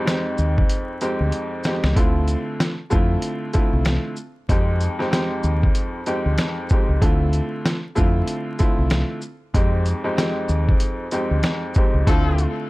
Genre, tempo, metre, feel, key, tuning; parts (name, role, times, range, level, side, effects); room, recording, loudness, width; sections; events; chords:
hip hop, boom-bap hip-hop; 95 BPM; 4/4; swing 59% on 16ths; D minor; A4 = 436 Hz
warm upright piano; accompaniment; 0.0-12.7 s; F2 to G4; -24 LUFS; equal; cassette tape, high-pass filter, low-pass filter, plate reverb
dusty soul sampler-style drum kit; drums; 0.1-12.6 s; hi-hat, kick drum, shaker, snare drum; -20 LUFS; equal
deep dub fingered electric bass; bass; 0.4-12.4 s; C2 to F2; -20 LUFS; equal
clear horn section; stabs; 12.1-12.5 s; F3 to A4; -27 LUFS; left 5 dB; high-pass filter, low-pass filter, ping-pong delay, plate reverb
light reverb; dark, warm production, vinyl crackle; -18 LUFS; side -20 dB against mid
0.0-12.1 A section
drum fill 1.3-2.0
0.0 Fm7; 2.0 Dm7; 4.5 Fm7; 7.0 Dm7; 9.5 Fm7; 12.1 Dm7